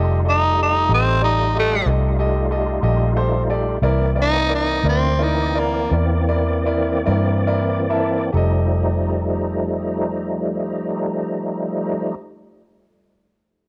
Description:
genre	slow blues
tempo	45-62 BPM (dotted quarters)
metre	12/8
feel	straight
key	F mixolydian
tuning	A4 = 440 Hz
part	clear concert grand piano	accompaniment	0.0-12.2 s	E4 to A5	-26 LUFS	equal	none
part	bright tonewheel organ	sustained chords	0.0-12.2 s	E3 to D5	-26 LUFS	equal	slow rotary speaker, chorus vibrato
part	vintage muted fingered electric bass	bass	0.0-12.1 s	F1 to G2	-23 LUFS	equal	none
part	growling tenor saxophone	melody	0.3-5.9 s	A3 to Eb4	-21 LUFS	equal	none
room	moderate studio reverb, RT60 0.6 s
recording	home recording on cassette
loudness	-19 LUFS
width	mono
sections	0.0-8.3 A section; 8.3-13.7 B section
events	tenor saxophone solo 0.0-8.3; slowing down 2.5-8.3; grand piano fill 7.1-8.3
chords	0.0 F9; 3.8 C9; 8.3 F9

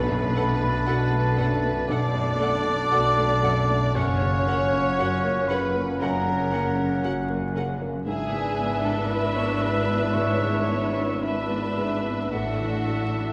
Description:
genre	cinematic, emotional film score for orchestra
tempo	58 BPM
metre	4/4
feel	rubato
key	B minor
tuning	A4 = 440 Hz
part	silver concert flute	second line	0.0-13.3 s	F#5 to D6	-32 LUFS	equal	none
part	warm clarinet	second line	0.0-13.3 s	C#4 to D4	-37 LUFS	equal	none
part	warm oboe	second line	0.0-13.3 s	E5 to A5	-35 LUFS	equal	none
part	warm symphonic violin section	second line	0.0-13.3 s	F#4 to D5	-33 LUFS	equal	none
part	felt-muted upright piano	accompaniment	0.0-13.3 s	B1 to F#4	-34 LUFS	equal	none
part	mellow French horn section	sustained chords	0.0-13.3 s	A#2 to E4	-35 LUFS	equal	none
part	concert harp	arpeggios	0.0-13.3 s	F#2 to A5	-38 LUFS	equal	none
part	rich symphonic double bass section	bass	0.0-13.3 s	F#1 to B1	-34 LUFS	equal	none
part	warm symphonic cello section	bass	0.0-13.3 s	F#2 to B2	-32 LUFS	equal	none
part	rich symphonic violin section	melody	0.4-13.3 s	E5 to F#5	-38 LUFS	equal	none
part	warm symphonic viola section	accompaniment	0.4-13.3 s	C#4 to C#5	-37 LUFS	equal	none
room	wet scoring stage reverb, RT60 1.6 s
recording	heard from further back in the room, vinyl crackle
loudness	-24 LUFS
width	mono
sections	0.0-13.3 A section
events	none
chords	0.0 Bm7; 4.0 F#; 8.1 E7/G#; 12.3 Asus4

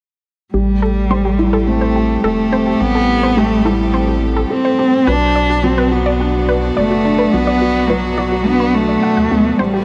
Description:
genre	piano and strings electronica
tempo	106 BPM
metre	4/4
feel	straight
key	A dorian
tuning	A4 = 440 Hz
part	warm cello	melody	0.5-9.8 s	F#3 to D4	-18 LUFS	equal	none
part	bright chamber string section	sustained chords	0.5-9.8 s	A2 to D5	-27 LUFS	equal	none
part	analog pluck	arpeggios	0.5-9.8 s	F#4 to F#5	-25 LUFS	equal	chorus, delay
part	felt-muted upright piano	riff	0.5-9.8 s	F#3 to F#5	-21 LUFS	equal	none
part	round analog bass	bass	0.5-9.8 s	E1 to D2	-23 LUFS	equal	none
part	riser	sound effects	9.8 s	none	-41 LUFS	equal	none
room	light reverb, small room ambience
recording	high-pass filter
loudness	-15 LUFS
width	mono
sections	0.5-9.8 A section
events	build-up 0.5-9.8; filter sweep 0.5-9.8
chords	0.5 Am7; 5.1 Bm

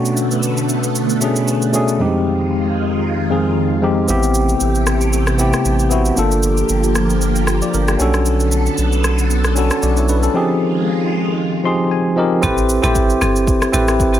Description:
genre	amapiano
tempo	115 BPM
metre	4/4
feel	swing 55% on 16ths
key	unclear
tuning	A4 = 440 Hz
part	tine electric piano	accompaniment	0.0-14.2 s	F2 to C6	-17 LUFS	left 1 dB	medium stereo tremolo
part	phased string machine	sustained chords	0.0-12.4 s	C3 to A4	-22 LUFS	right 1 dB	ensemble chorus, phaser, sidechain pumping
part	afro-pop drum kit	drums	0.1-14.2 s	kick drum, rim click, shaker	-22 LUFS	right 1 dB	none
part	saturated sub bass	bass	4.1-10.3 s	G1 to B1	-17 LUFS	right 1 dB	none
part	marimba with hard mallets	stabs	12.4-13.9 s	C4 to A4	-20 LUFS	right 3 dB	digital delay
part	deep log drum bass	bass	12.4-14.2 s	G1 to A1	-19 LUFS	right 1 dB	none
room	light reverb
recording	none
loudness	-14 LUFS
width	side -11 dB against mid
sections	0.0-12.4 A section; 12.4-14.2 B section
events	drums muted 2.0-4.1; tine electric piano fill 11.4-12.4; drop 12.4-14.2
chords	0.0 Bm7; 2.0 Fm7; 4.1 Am7; 6.2 Gm7; 8.0 Bm7; 10.3 Fm7; 12.4 Am7

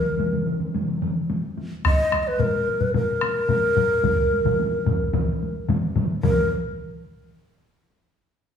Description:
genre	japanese traditional, taiko drum ensemble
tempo	109 BPM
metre	4/4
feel	straight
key	unclear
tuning	A4 = 441 Hz
part	breathy mellow long shakuhachi	melody	0.0-6.5 s	Bb4 to Eb5	-23 LUFS	equal	none
part	taiko ensemble	percussion	0.1-6.5 s	none	-29 LUFS	left 1 dB	none
part	taiko ensemble	percussion	0.2-6.8 s	none	-27 LUFS	right 2 dB	none
part	solo taiko drums	percussion	1.8-6.7 s	none	-26 LUFS	left 5 dB	none
part	taiko ensemble	percussion	1.9-6.5 s	none	-27 LUFS	equal	none
room	wet recital hall reverb, RT60 1.3 s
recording	small room ambience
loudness	-20 LUFS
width	side -8 dB against mid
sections	0.0-6.2 A section; 6.2-8.4 B section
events	none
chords	none

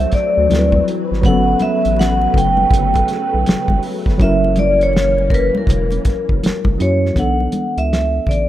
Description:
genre	R&B, neo-soul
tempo	81 BPM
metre	4/4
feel	swing 63% on 16ths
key	B minor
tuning	A4 = 439 Hz
part	vibraphone with medium hard mallets	melody	0.0-8.5 s	A#4 to G5	-18 LUFS	equal	none
part	tine electric piano	accompaniment	0.0-8.5 s	E3 to B4	-21 LUFS	right 1 dB	medium stereo tremolo
part	soft string machine	sustained chords	0.0-7.1 s	C#3 to B4	-24 LUFS	left 2 dB	phaser, ensemble chorus
part	round analog bass	bass	0.0-8.5 s	E1 to F#2	-19 LUFS	equal	none
part	cloth-damped thuddy drum kit	drums	0.1-8.5 s	hi-hat, kick drum, snare drum	-17 LUFS	equal	none
part	congas	percussion	0.5-8.5 s	none	-26 LUFS	left 2 dB	none
room	little or no reverb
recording	rough home demo mix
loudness	-13 LUFS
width	side -13 dB against mid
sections	0.0-7.2 A section; 7.2-8.5 B section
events	none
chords	0.5 D13; 1.2 Gmaj9#11; 4.2 F#7; 7.2 Bm11

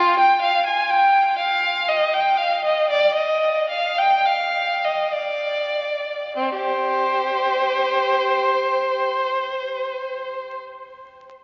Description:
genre	classical, baroque-style suite movement for unaccompanied violin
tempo	46-64 BPM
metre	4/4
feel	rubato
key	C minor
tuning	A4 = 440 Hz
part	rich violin	solo	0.0-10.6 s	C4 to Ab5	-20 LUFS	equal	none
room	wet cathedral reverb, RT60 5.6 s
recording	very old 78 rpm record, vinyl crackle, nothing above 7.5 kHz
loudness	-20 LUFS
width	mono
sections	0.0-6.4 A section; 6.4-11.1 B section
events	slowing down 0.0-6.4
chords	none

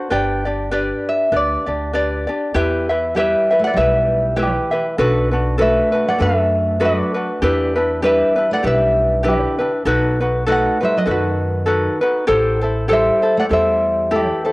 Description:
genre	Hawaiian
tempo	98 BPM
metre	4/4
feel	swing 56% on 8ths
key	E minor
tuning	A4 = 438 Hz
part	ukulele	accompaniment	0.0-14.5 s	D4 to E5	-18 LUFS	left 1 dB	cassette tape
part	tenor ukulele	melody	0.1-14.5 s	F#4 to G5	-18 LUFS	equal	cassette tape
part	upright bass	bass	0.1-14.3 s	G1 to F#2	-22 LUFS	equal	tube saturation
part	fingerpicked steel-string acoustic guitar	second line	3.1-14.5 s	D3 to A3	-26 LUFS	right 2 dB	cassette tape
room	moderate spring reverb, RT60 2.0 s, small room ambience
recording	home recording on cassette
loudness	-15 LUFS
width	side -21 dB against mid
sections	0.0-2.6 A section; 2.6-14.5 B section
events	none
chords	0.1 G; 2.6 Em; 5.0 Bm7; 7.4 Em7; 9.9 B7; 12.3 Am7

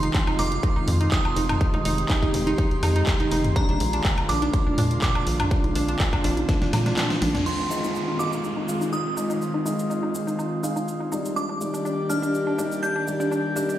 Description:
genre	progressive house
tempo	123 BPM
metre	4/4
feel	straight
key	F dorian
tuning	A4 = 440 Hz
part	glassy synth bell	melody	0.0-13.8 s	Bb5 to G6	-32 LUFS	right 2 dB	chorus, phaser, tape echo
part	airy breathy pad	sustained chords	0.0-13.8 s	D3 to D5	-29 LUFS	right 1 dB	chorus, sidechain pumping
part	analog pluck	arpeggios	0.0-13.8 s	D4 to Eb4	-29 LUFS	right 1 dB	chorus, sidechain pumping, digital delay
part	tight sequencer bass	bass	0.0-7.4 s	F1 to Bb2	-24 LUFS	equal	sidechain pumping
part	big-room dance drum kit	drums	0.0-13.8 s	cabasa, crash cymbal, handclaps, hi-hat, snare drum, woodblock	-30 LUFS	equal	none
part	twinkling granular texture	texture	0.0-7.5 s	C6	-40 LUFS	right 2 dB	built-in reverb, sidechain pumping
part	electronic kick drum	drums	0.1-6.6 s	none	-24 LUFS	equal	none
part	electronic congas and toms	percussion	0.5-7.4 s	none	-30 LUFS	equal	sidechain pumping on perc, sidechain pumping on toms
part	downlifter	sound effects	7.5-11.4 s	none	-35 LUFS	equal	none
part	felt-muted upright piano	stabs	7.7-13.8 s	G3 to F5	-29 LUFS	left 2 dB	sidechain pumping, low-pass filter, digital delay
room	moderate lush hall reverb, RT60 1.7 s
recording	played on a big sound system in a bare room, stone room reverb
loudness	-21 LUFS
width	side -12 dB against mid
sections	0.0-7.5 A section; 7.5-13.8 B section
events	drum fill 6.5-7.5; kick drops out 7.0-7.5; band accent 7.3; filter sweep on synth pluck 7.5-13.8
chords	0.0 Fm7; 3.6 Bb7; 7.5 Fm7; 11.4 Ebmaj7

